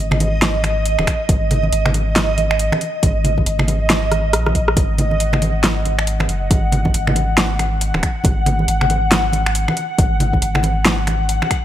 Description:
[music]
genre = deep dubstep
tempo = 138 BPM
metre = 4/4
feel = swing 60% on 16ths, half-time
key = unclear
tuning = A4 = 442 Hz
[part]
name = saturated sub bass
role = bass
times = 0.0-11.4 s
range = D#1 to A#1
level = -20 LUFS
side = equal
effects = none
[part]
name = backwards swelling texture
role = texture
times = 0.0-11.6 s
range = D#5 to F#5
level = -22 LUFS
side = equal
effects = built-in reverb
[part]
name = deep house drum kit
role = drums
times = 0.1-11.6 s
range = finger snaps, hi-hat, rim click, snare drum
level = -19 LUFS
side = equal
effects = none
[part]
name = congas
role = percussion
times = 0.1-11.5 s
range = none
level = -23 LUFS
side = right 1 dB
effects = dub echo
[part]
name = electronic kick drum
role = drums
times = 1.1-11.6 s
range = none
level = -18 LUFS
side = equal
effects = none
[sound]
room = moderate echo chamber reverb, RT60 2.1 s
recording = none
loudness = -15 LUFS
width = side -12 dB against mid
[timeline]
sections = 0.0-11.6 A section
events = drum fill 4.1-4.8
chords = 0.0 G#5

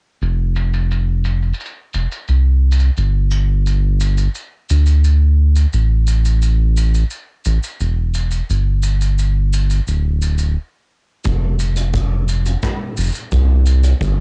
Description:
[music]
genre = folktronica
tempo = 87 BPM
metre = 4/4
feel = straight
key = unclear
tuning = A4 = 439 Hz
[part]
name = round analog bass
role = bass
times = 0.2-14.2 s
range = D1 to D2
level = -16 LUFS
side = equal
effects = none
[part]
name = jazz brush drum kit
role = drums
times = 0.2-14.2 s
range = hi-hat, rim click, shaker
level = -32 LUFS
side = equal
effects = low-pass filter on hats, cassette tape, low-pass filter on snare, low-pass filter on perc, low-pass filter on room
[part]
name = kick drum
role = drums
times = 11.3-14.1 s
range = none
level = -27 LUFS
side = equal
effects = cassette tape
[sound]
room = little or no reverb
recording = home recording on cassette, nothing above 10.3 kHz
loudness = -17 LUFS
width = mono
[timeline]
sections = 0.2-11.3 A section; 11.3-14.2 B section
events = stop 10.6-11.3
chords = none

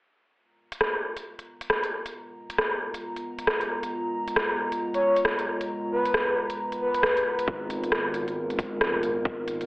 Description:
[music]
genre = future garage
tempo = 135 BPM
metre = 4/4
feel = swing 61% on 16ths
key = G# dorian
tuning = A4 = 440 Hz
[part]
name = dark analog pad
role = sustained chords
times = 0.4-9.7 s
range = G#3 to A#5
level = -32 LUFS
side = equal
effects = wide subtle chorus, sidechain pumping
[part]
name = garage drum kit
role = drums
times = 0.7-9.7 s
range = hi-hat, rim click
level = -26 LUFS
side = equal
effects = none
[part]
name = breathy flute-like synth lead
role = melody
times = 4.9-7.4 s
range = B4 to C#5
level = -26 LUFS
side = equal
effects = lush chorus, tape echo
[part]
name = dark detuned saw bass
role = bass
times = 7.5-9.7 s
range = E#1 to G#1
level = -35 LUFS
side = equal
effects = sidechain pumping
[part]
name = electronic kick drum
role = drums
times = 7.5-9.4 s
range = none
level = -30 LUFS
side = equal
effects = none
[sound]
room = moderate digital room reverb, RT60 1.1 s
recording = heavily compressed radio sound, telephone sound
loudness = -24 LUFS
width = side -21 dB against mid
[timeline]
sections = 0.4-7.5 A section; 7.5-9.7 B section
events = fade-in on analog synth pad 0.4-7.5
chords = 0.4 G#m69

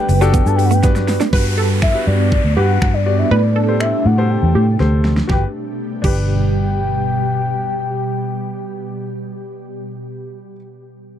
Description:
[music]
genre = dance-pop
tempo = 121 BPM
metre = 4/4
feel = straight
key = G major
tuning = A4 = 440 Hz
[part]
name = soft octave-layered synth lead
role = melody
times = 0.0-10.0 s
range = D5 to A5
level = -22 LUFS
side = left 4 dB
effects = chorus, tremolo, slapback echo
[part]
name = clear baby grand piano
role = accompaniment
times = 0.0-10.6 s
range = D4 to D5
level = -24 LUFS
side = left 7 dB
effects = sidechain pumping
[part]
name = ethereal airy pad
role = sustained chords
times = 0.0-9.8 s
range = B2 to B4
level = -23 LUFS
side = right 2 dB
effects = ensemble chorus, built-in reverb, sidechain pumping
[part]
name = direct-recorded clean electric guitar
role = riff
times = 0.0-1.3 s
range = A3 to D4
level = -22 LUFS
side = right 9 dB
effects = wide subtle chorus
[part]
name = vintage muted fingered electric bass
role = bass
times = 0.1-10.5 s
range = F#1 to A2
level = -16 LUFS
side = equal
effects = sidechain pumping
[part]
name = pop drum kit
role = drums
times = 0.1-6.2 s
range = crash cymbal, finger snaps, hi-hat, kick drum, shaker, snare drum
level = -18 LUFS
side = equal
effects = overdrive
[part]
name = wide unison pluck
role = melody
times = 1.3-6.7 s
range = G4 to B4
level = -24 LUFS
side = right 5 dB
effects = sidechain pumping, slapback echo
[part]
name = downlifter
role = sound effects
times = 1.3-5.3 s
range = none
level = -29 LUFS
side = equal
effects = none
[sound]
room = little or no reverb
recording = dry, close 1970s-style studio recording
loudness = -14 LUFS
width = side -10 dB against mid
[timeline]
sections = 0.0-1.3 A section; 1.3-5.3 B section; 5.3-9.3 C section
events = drum fill 0.8-1.3, 4.8-5.3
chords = 0.0 Gmaj7; 3.3 Am7; 5.3 G

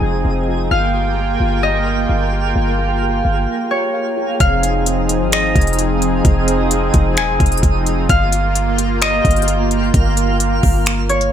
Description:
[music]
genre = hip hop, atmospheric cloud-rap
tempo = 130 BPM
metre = 4/4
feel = half-time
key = F minor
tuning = A4 = 440 Hz
[part]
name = Celtic harp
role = melody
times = 0.0-11.3 s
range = Db5 to Ab5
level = -20 LUFS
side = left 1 dB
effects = ping-pong delay
[part]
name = warm analog pad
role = sustained chords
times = 0.0-11.3 s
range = F3 to G5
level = -20 LUFS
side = right 1 dB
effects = chorus, tremolo, sidechain pumping
[part]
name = muted felt-like synth keys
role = arpeggios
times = 0.0-4.4 s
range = F4 to F5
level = -28 LUFS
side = left 2 dB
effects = chorus, phaser, ping-pong delay
[part]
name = warm 808-style bass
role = bass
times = 0.0-11.3 s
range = Eb1 to Ab1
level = -18 LUFS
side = equal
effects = none
[part]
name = twinkling granular texture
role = texture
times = 0.0-11.3 s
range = Ab3 to F5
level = -26 LUFS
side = right 1 dB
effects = built-in reverb, lush chorus
[part]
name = smooth R&B drum kit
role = drums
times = 4.4-11.3 s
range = finger snaps, hi-hat, kick drum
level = -17 LUFS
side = equal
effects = none
[sound]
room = light reverb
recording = bright 1980s-style digital production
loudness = -14 LUFS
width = side -9 dB against mid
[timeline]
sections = 0.0-4.4 A section; 4.4-11.3 B section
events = break 3.5-4.4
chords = 0.0 Fm7; 0.7 Gm7; 4.4 Fm7; 8.1 Gm7

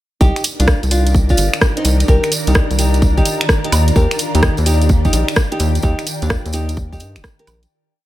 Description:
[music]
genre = UK garage, two-step garage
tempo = 128 BPM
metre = 4/4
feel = swing 66% on 16ths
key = C minor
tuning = A4 = 440 Hz
[part]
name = nylon-string guitar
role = melody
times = 0.2-7.6 s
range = C4 to Bb4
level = -22 LUFS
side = right 1 dB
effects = none
[part]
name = soft string machine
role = sustained chords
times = 0.5-7.7 s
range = D4 to Bb4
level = -28 LUFS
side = left 1 dB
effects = ensemble chorus, sidechain pumping
[part]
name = rubbery square bass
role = bass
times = 0.2-7.7 s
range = Eb1 to G2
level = -15 LUFS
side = equal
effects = tube saturation, sidechain pumping
[part]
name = electronic kick drum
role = drums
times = 0.2-7.4 s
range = none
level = -15 LUFS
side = equal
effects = studio reverb
[part]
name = tambourine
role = percussion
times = 0.2-7.7 s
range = none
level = -27 LUFS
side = right 4 dB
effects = none
[part]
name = ethereal airy pad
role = texture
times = 1.5-7.7 s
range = Eb3 to Bb5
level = -24 LUFS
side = equal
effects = ensemble chorus, built-in reverb, sidechain pumping
[part]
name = garage drum kit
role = drums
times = 0.4-7.7 s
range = finger snaps, hi-hat, rim click, woodblock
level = -19 LUFS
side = right 1 dB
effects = studio reverb
[sound]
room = little or no reverb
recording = none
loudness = -13 LUFS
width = side -15 dB against mid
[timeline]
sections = 0.2-7.7 drop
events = drop 0.2-7.7; fade-out 5.2-7.7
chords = 0.2 Cm9; 3.7 Ebmaj7

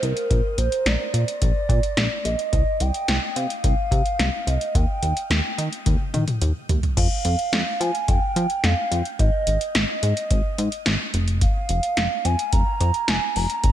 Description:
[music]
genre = synth-pop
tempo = 108 BPM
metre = 4/4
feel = straight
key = unclear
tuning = A4 = 440 Hz
[part]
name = hollow clarinet-like synth lead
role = melody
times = 0.0-13.7 s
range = Bb4 to Bb5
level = -26 LUFS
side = right 1 dB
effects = chorus, shimmer reverb, ping-pong delay
[part]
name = chorused synth bass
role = bass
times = 0.0-13.7 s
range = F1 to F3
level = -22 LUFS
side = equal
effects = none
[part]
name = electro analog drum machine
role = drums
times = 0.0-13.7 s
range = crash cymbal, hi-hat, kick drum, snare drum, toms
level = -23 LUFS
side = equal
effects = none
[sound]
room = light reverb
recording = bright 1980s-style digital production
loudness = -20 LUFS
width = side -12 dB against mid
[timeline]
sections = 0.0-7.0 A section; 7.0-13.7 B section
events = drum fill 5.9-7.0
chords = 0.3 Bb; 2.5 C5; 4.8 Eb; 7.0 Fsus2; 9.2 Ab5; 11.1 Fmadd11

